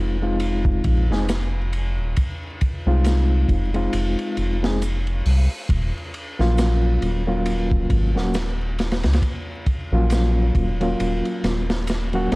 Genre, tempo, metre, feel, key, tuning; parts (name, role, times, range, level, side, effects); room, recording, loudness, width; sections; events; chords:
trip hop; 68 BPM; 4/4; swing 58% on 16ths; F phrygian; A4 = 440 Hz
overdriven reed electric piano; accompaniment; 0.0-12.4 s; Gb3 to Ab4; -24 LUFS; equal; tremolo, vintage 12-bit sampler grit, tape echo
round analog bass; bass; 0.0-12.4 s; Eb1 to Db2; -21 LUFS; equal; tube saturation
crunchy breakbeat drum kit; drums; 0.4-12.4 s; hi-hat, kick drum, ride cymbal, snare drum; -25 LUFS; equal
maracas; percussion; 1.3-12.1 s; -45 LUFS; right 6 dB
light reverb; dark, warm production, vinyl crackle; -19 LUFS; side -23 dB against mid
0.0-12.4 A section
0.0 Fm7; 5.7 Ebm7